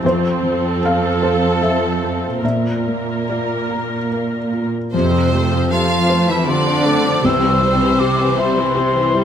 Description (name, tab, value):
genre	cinematic, emotional film score for orchestra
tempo	71-81 BPM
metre	3/4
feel	rubato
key	F major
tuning	A4 = 439 Hz
part	felt-muted upright piano	accompaniment	0.0-9.2 s	C2 to Bb5	-22 LUFS	left 2 dB	none
part	rich symphonic viola section	accompaniment	0.0-9.2 s	C3 to Bb4	-22 LUFS	right 1 dB	none
part	concert harp	arpeggios	0.0-9.2 s	F2 to C6	-24 LUFS	left 6 dB	none
part	warm studio cello section	bass	0.0-9.1 s	F2 to F3	-21 LUFS	right 3 dB	none
part	bright symphonic violin section	second line	4.9-9.1 s	C5 to F5	-22 LUFS	equal	none
part	warm clarinet	second line	4.9-9.1 s	C4 to F4	-24 LUFS	left 1 dB	none
part	rich studio double bass section	bass	4.9-7.9 s	C2 to F2	-23 LUFS	right 2 dB	none
part	clear symphonic violin section	melody	5.0-9.2 s	C4	-25 LUFS	left 4 dB	none
part	hollow concert flute	second line	5.7-9.2 s	A5 to E6	-20 LUFS	left 1 dB	none
room	light reverb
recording	close, detailed microphones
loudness	-15 LUFS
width	side -8 dB against mid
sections	0.0-4.9 A section; 4.9-9.2 A section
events	none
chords	0.0 F; 2.4 Bb; 4.9 F; 7.2 C